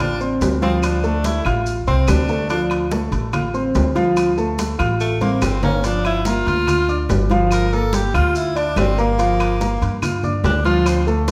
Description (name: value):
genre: Afro-Cuban jazz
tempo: 144 BPM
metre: 4/4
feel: straight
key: unclear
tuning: A4 = 443 Hz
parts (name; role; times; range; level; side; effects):
- edgy tenor saxophone; second line; 0.0-11.1 s; A3 to Bb4; -26 LUFS; equal; none
- warm concert grand piano; accompaniment; 0.0-11.3 s; F3 to F6; -23 LUFS; equal; none
- upright bass; bass; 0.0-11.3 s; G1 to G2; -23 LUFS; equal; none
- congas; percussion; 0.0-11.3 s; none; -28 LUFS; equal; none
- timbales; percussion; 0.0-11.3 s; none; -30 LUFS; equal; none
- maracas; percussion; 0.2-11.3 s; none; -39 LUFS; equal; none
- claves; percussion; 0.8-11.1 s; none; -36 LUFS; equal; none
room: wet recital hall reverb, RT60 1.4 s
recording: recorded in a church or concert hall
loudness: -18 LUFS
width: mono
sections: 0.0-11.3 A section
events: tenor saxophone solo 0.0-11.3; drum fill 5.2-5.8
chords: 0.0 Dm7; 5.8 Gm7